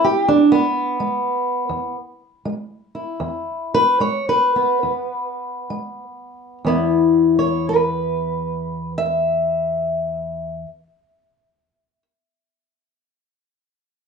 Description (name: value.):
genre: acoustic country blues, solo or duo.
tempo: 62-85 BPM.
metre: 4/4.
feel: swing 65% on 8ths.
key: E major.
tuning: A4 = 440 Hz.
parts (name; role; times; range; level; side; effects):
fingerpicked old ladder-braced acoustic guitar; solo; 0.0-12.0 s; E2 to E5; -17 LUFS; equal; slapback echo.
room: wet studio reverb, RT60 0.6 s.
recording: heard from further back in the room, nothing above 10.6 kHz.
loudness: -17 LUFS.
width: side -5 dB against mid.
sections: 0.0-6.7 A section; 6.7-10.5 B section.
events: steel-string acoustic guitar solo 0.0-6.7; slowing down 0.3-6.7.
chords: 0.3 E; 6.7 E5.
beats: | 0.28 0.99 1.71 2.45 | 3.21 4.01 4.84 5.72 | 6.65 7.62 8.59 9.56.